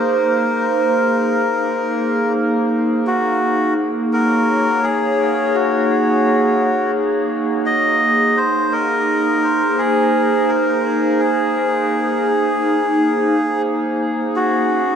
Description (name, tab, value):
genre	ambient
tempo	85 BPM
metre	4/4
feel	swing 55% on 16ths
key	Bb minor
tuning	A4 = 440 Hz
part	melodica	melody	0.0-15.0 s	Gb4 to Eb5	-18 LUFS	left 1 dB	dub echo
part	warbly tape-like pad	sustained chords	0.0-15.0 s	Bb3 to Db5	-17 LUFS	right 1 dB	chorus, built-in reverb
room	wet lush hall reverb, RT60 2.8 s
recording	dreamy mix soaked in reverb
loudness	-15 LUFS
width	side -7 dB against mid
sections	0.0-15.0 A section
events	none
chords	0.0 Bb9sus4; 2.7 Ab7sus4; 8.4 Bb9sus4; 14.0 Bbm7